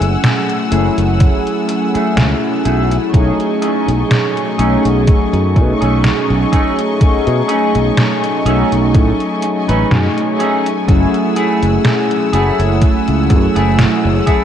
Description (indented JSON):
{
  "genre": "vaporwave",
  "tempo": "62 BPM",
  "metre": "4/4",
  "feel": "swing 54% on 16ths",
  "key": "F# dorian",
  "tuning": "A4 = 440 Hz",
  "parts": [
    { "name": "mellow synth brass", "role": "accompaniment", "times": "0.0-14.4 s", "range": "F#3 to G#4", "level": "-16 LUFS", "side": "equal", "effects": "wide subtle chorus, analog delay" },
    { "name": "clear symphonic string section", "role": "sustained chords", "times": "0.0-14.4 s", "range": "A3 to E6", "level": "-22 LUFS", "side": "left 2 dB", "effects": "none" },
    { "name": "modern bright fingered electric bass", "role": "bass", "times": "0.0-14.2 s", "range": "F#1 to B2", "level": "-16 LUFS", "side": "equal", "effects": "none" },
    { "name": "detuned 8-bit digital drum machine", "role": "drums", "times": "0.0-14.4 s", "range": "hi-hat, snare drum", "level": "-18 LUFS", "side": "equal", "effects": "overdrive, gated reverb" },
    { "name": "clean electric guitar", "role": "riff", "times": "0.7-14.4 s", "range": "A3 to B4", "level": "-22 LUFS", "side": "right 1 dB", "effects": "wide subtle chorus, vintage 12-bit sampler grit, low-pass filter, analog delay" },
    { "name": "electronic kick drum", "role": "drums", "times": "1.2-14.4 s", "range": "none", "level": "-12 LUFS", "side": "equal", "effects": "overdrive" }
  ],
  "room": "light reverb",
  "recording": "cassette tape",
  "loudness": "-11 LUFS",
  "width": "side -9 dB against mid",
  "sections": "0.0-14.4 A section",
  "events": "filter sweep on clean electric guitar 0.0-14.4",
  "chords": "0.0 F#m9; 3.1 B13; 10.9 F#m9"
}